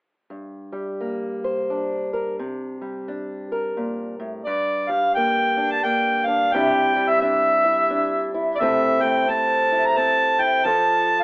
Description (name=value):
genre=acoustic folk duo or small band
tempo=87 BPM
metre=3/4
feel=swing 62% on 8ths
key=G dorian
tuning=A4 = 440 Hz
part: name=fingerpicked acoustic archtop guitar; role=accompaniment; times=0.3-11.2 s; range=G2 to C5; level=-24 LUFS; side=equal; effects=none
part: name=warm harmonica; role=melody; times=4.4-11.2 s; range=D5 to Bb5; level=-18 LUFS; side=equal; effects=plate reverb
room=wet small room reverb, RT60 0.6 s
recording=telephone sound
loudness=-18 LUFS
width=side -26 dB against mid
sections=0.3-4.5 A section; 4.5-11.2 B section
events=none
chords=0.3 Gm; 2.4 Csus2; 4.5 Gm; 6.5 Cadd9; 8.6 Am/C; 10.7 F